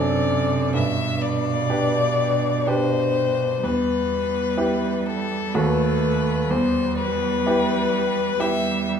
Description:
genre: classical, slow romantic movement for piano trio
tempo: 63 BPM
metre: 3/4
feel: rubato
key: G major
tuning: A4 = 439 Hz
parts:
  - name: warm violin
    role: melody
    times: 0.0-8.9 s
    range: A4 to E5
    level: -23 LUFS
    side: left 7 dB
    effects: none
  - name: rich cello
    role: second line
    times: 0.0-9.0 s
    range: B2 to A3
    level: -26 LUFS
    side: right 7 dB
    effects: none
  - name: bright concert grand piano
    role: accompaniment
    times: 0.0-9.0 s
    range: D#2 to C5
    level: -24 LUFS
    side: right 1 dB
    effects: none
room: wet recital hall reverb, RT60 1.5 s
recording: minimal, uncompressed stereo recording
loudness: -19 LUFS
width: side -7 dB against mid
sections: 0.0-9.0 A section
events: none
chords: 0.0 D7/F#; 0.7 G; 3.6 Em; 5.5 B7/D#; 6.5 Em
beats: | 0.74 1.69 2.67 | 3.63 4.56 5.54 | 6.49 7.45 8.39

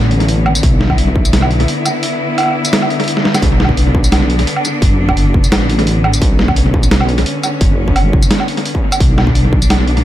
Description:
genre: half-time drum and bass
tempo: 172 BPM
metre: 4/4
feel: half-time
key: B minor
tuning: A4 = 440 Hz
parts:
  - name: clear studio cello section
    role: sustained chords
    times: 0.0-10.0 s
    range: D3 to E4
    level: -18 LUFS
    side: left 2 dB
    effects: sidechain pumping
  - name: deep soft wobble bass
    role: bass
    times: 0.0-10.0 s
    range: F#1 to B1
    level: -14 LUFS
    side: equal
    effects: chorus
  - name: boom bap sampler-style drum kit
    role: drums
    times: 0.1-10.0 s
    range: hi-hat, snare drum, tambourine, woodblock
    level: -16 LUFS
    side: right 1 dB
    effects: dub echo
  - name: electronic kick drum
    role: drums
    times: 0.6-1.2, 3.4-9.6 s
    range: none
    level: -14 LUFS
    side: equal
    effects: distortion, overdrive
room: light reverb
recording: echo-heavy mix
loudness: -10 LUFS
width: side -13 dB against mid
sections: 0.0-10.0 A section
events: drum fill 3.2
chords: 0.0 Bmadd9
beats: 0.28 | 0.63 0.98 1.33 1.68 | 2.03 2.38 2.73 3.08 | 3.42 3.77 4.12 4.47 | 4.82 5.17 5.52 5.87 | 6.21 6.56 6.91 7.26 | 7.61 7.96 8.31 8.66 | 9.01 9.35 9.70

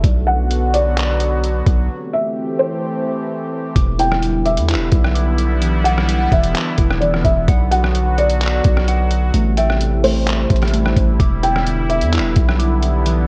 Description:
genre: hip hop, atmospheric cloud-rap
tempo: 129 BPM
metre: 4/4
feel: half-time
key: E minor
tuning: A4 = 440 Hz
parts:
  - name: felt-muted upright piano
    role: melody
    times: 0.0-13.0 s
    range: C5 to G5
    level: -23 LUFS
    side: equal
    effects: low-pass filter, digital delay
  - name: sweeping resonant pad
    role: sustained chords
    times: 0.0-13.3 s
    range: C3 to G4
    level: -26 LUFS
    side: equal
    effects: chorus, sidechain pumping
  - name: long sustained 808-style bass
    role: bass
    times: 0.0-13.3 s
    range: E1 to E2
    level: -20 LUFS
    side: equal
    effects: none
  - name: trip hop sampler-style drum kit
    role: drums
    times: 0.0-13.2 s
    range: handclaps, hi-hat, kick drum, rim click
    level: -22 LUFS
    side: equal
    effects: none
  - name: mellow electric guitar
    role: arpeggios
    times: 3.8-13.3 s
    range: E3 to D6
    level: -27 LUFS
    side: equal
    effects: low-pass filter, digital delay
room: digital ambience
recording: worn, warbling old tape, cassette tape, warbly pitch drift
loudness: -17 LUFS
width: mono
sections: 0.0-3.8 A section; 3.8-13.3 B section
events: break 1.9-3.8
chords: 0.0 Bm; 1.9 Am7; 3.8 Em7; 7.5 Bm; 9.3 Am7; 11.2 Em7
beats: | 0.04 0.50 0.97 1.43 | 1.90 2.36 2.83 3.29 | 3.76 4.22 4.69 5.15 | 5.62 6.08 6.55 7.01 | 7.48 7.95 8.41 8.88 | 9.34 9.81 10.27 10.74 | 11.20 11.67 12.13 12.60 | 13.06

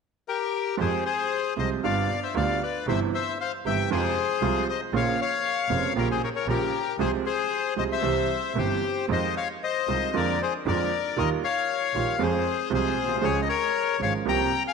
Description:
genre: tango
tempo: 116 BPM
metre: 4/4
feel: rubato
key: F minor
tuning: A4 = 441 Hz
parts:
  - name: bandoneon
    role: melody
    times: 0.3-14.7 s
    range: G4 to Bb5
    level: -26 LUFS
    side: left 8 dB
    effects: none
  - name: clear upright piano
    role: accompaniment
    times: 0.8-14.5 s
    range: F1 to Ab4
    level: -28 LUFS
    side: right 9 dB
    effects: none
  - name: clear double bass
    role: bass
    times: 0.8-14.5 s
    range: F1 to F2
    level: -31 LUFS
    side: right 2 dB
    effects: none
room: wet echo chamber reverb, RT60 2.1 s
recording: 1960s-style stereo with parts hard left and right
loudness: -23 LUFS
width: side -5 dB against mid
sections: 0.8-14.7 A section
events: none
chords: 0.0 N.C.; 0.8 Fmadd9; 1.8 G7; 2.9 C/G; 3.9 Fm; 4.9 Bbm; 6.0 Gdim/Bb; 7.0 Fm/C; 8.0 C; 9.1 Fm7; 10.1 Bb7/F; 11.2 Ebadd9; 12.2 Fm; 13.2 Db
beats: 0.27 | 0.79 1.31 1.83 2.35 | 2.87 3.39 3.91 4.42 | 4.94 5.45 5.96 6.47 | 6.99 7.51 8.03 8.56 | 9.08 9.61 10.13 10.65 | 11.17 11.68 12.20 12.71 | 13.22 13.74 14.25

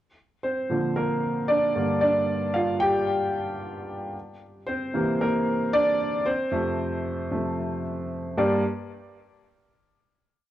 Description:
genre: pop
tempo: 113 BPM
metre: 4/4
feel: straight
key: G minor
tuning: A4 = 440 Hz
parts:
  - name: warm grand piano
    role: solo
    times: 0.4-8.6 s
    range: F2 to G5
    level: -23 LUFS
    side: equal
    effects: ping-pong delay
room: wet small room reverb, RT60 0.5 s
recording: worn, warbling old tape, cassette tape, warbly pitch drift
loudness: -23 LUFS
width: side -13 dB against mid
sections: 0.0-8.4 pre-chorus; 8.4-10.5 final chord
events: grand piano solo 0.0-8.4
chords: 0.0 Bb; 1.8 Gm; 4.1 C7; 6.3 F; 8.4 Gm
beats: 0.43 0.96 1.49 | 2.02 2.56 3.08 3.62 | 4.14 4.67 5.20 5.73 | 6.26 6.79 7.32 7.84 | 8.37

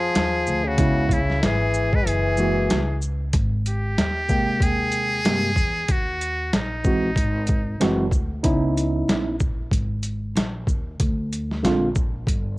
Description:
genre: hip hop, jazz-hop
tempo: 94 BPM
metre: 4/4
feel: swing 58% on 16ths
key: unclear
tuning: A4 = 440 Hz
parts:
  - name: trumpet with metal mute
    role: melody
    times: 0.0-8.1 s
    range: Eb4 to Cb5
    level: -25 LUFS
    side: equal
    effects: cassette tape
  - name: clear trombone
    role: second line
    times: 0.0-3.0 s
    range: Db3 to Ab3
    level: -25 LUFS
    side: left 3 dB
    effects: cassette tape
  - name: upright bass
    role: bass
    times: 0.0-12.6 s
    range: Gb1 to G2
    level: -26 LUFS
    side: equal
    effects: none
  - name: boom bap sampler-style drum kit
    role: drums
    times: 0.2-12.5 s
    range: hi-hat, kick drum, shaker, snare drum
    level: -23 LUFS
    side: equal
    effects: cassette tape
  - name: tine electric piano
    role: accompaniment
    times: 0.8-11.9 s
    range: C3 to G5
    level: -23 LUFS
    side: right 1 dB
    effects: medium stereo tremolo, cassette tape
room: light reverb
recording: home recording on cassette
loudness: -20 LUFS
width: side -20 dB against mid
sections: 0.0-3.3 A section; 3.3-12.6 B section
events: none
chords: 0.0 Bb7sus4 (rootless); 0.8 Dbm7; 2.1 Gb9; 3.3 Abmaj9; 5.9 Ebm; 7.2 Ab7b13; 8.4 Dbm9; 11.0 Dm7b5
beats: 0.15 | 0.78 1.42 2.06 2.70 | 3.34 3.98 4.61 5.25 | 5.89 6.53 7.17 7.80 | 8.44 9.08 9.72 10.36 | 11.00 11.63 12.27

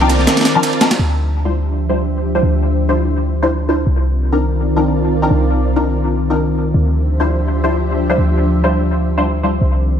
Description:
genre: drum and bass, jungle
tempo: 167 BPM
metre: 4/4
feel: swing 55% on 16ths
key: D minor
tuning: A4 = 439 Hz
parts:
  - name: soft string machine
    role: sustained chords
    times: 0.0-10.0 s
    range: Eb3 to E5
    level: -19 LUFS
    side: equal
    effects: ensemble chorus
  - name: filtered dub chord stab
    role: stabs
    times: 0.0-9.5 s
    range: F3 to C5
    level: -19 LUFS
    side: left 2 dB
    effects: phaser, ensemble chorus, dub echo
  - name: warm 808-style bass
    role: bass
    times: 0.0-10.0 s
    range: C2 to D2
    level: -16 LUFS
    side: equal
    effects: none
  - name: breakbeat sampler-style drum kit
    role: drums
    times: 0.0-1.0 s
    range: hi-hat, shaker, snare drum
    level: -27 LUFS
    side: right 5 dB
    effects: none
  - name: breakbeat sampler-style drum kit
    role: drums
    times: 0.1-1.0 s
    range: ride cymbal, snare drum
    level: -16 LUFS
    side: right 1 dB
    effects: none
room: light reverb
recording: none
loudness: -13 LUFS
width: side -8 dB against mid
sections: 1.0-10.0 A section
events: none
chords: 0.0 Cm11; 1.0 Dm11; 3.9 Cm11; 6.7 Dm11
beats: 0.28 0.63 | 0.99 1.35 1.71 2.07 | 2.43 2.79 3.15 3.51 | 3.87 4.23 4.59 4.95 | 5.30 5.66 6.02 6.38 | 6.74 7.10 7.46 7.82 | 8.18 8.54 8.90 9.26 | 9.62 9.97

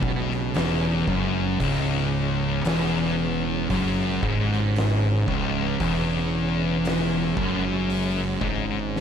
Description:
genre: stoner and doom metal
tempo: 57 BPM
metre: 4/4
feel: straight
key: C# minor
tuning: A4 = 440 Hz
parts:
  - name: percussive tonewheel organ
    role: sustained chords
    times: 0.0-9.0 s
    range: C#3 to C#4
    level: -34 LUFS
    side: right 2 dB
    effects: slow rotary speaker, overdrive, chorus vibrato
  - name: thick fuzz guitar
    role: riff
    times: 0.0-9.0 s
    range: C#2 to B2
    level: -26 LUFS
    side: left 8 dB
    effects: distortion
  - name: thick fuzz guitar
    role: riff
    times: 0.0-9.0 s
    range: C#2 to B2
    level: -26 LUFS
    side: right 6 dB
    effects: distortion
  - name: overdriven fingered electric bass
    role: bass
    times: 0.0-9.0 s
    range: C#1 to B1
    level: -31 LUFS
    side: equal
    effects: none
  - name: oversized low-tuned drum kit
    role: drums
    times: 0.0-9.0 s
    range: hi-hat, kick drum, snare drum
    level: -30 LUFS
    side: equal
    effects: none
room: small room ambience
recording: none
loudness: -21 LUFS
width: side -8 dB against mid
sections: 0.0-9.0 A section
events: none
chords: 0.0 C#m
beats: 0.54 | 1.60 2.65 3.70 4.75 | 5.80 6.84 7.89 8.93

